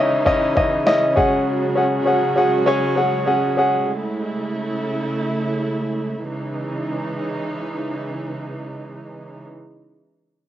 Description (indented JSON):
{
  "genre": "piano-driven pop",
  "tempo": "100 BPM",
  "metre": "4/4",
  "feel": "straight",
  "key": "C# minor",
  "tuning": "A4 = 438 Hz",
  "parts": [
    { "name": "clear concert grand piano", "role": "accompaniment", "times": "0.0-3.9 s", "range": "C#3 to F#5", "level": "-17 LUFS", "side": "left 1 dB", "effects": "cassette tape, plate reverb" },
    { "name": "warm studio string section", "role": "sustained chords", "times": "0.0-9.5 s", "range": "C#3 to F#4", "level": "-24 LUFS", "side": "right 2 dB", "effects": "cassette tape" },
    { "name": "dusty soul sampler-style drum kit", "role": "drums", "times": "0.3-1.3 s", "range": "kick drum, snare drum", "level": "-24 LUFS", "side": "equal", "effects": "overdrive, cassette tape" }
  ],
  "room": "moderate small room reverb, RT60 0.5 s",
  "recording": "home recording on cassette",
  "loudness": "-18 LUFS",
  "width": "side -12 dB against mid",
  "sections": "0.0-6.3 A section; 6.3-8.7 B section",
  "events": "none",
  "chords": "0.0 C#madd9; 1.2 F#sus2; 3.9 Amaj7; 6.3 C#madd9",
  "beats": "0.27 0.87 | 1.47 2.07 2.68 3.28 | 3.88 4.49 5.09 5.69 | 6.29 6.90 7.50 8.10"
}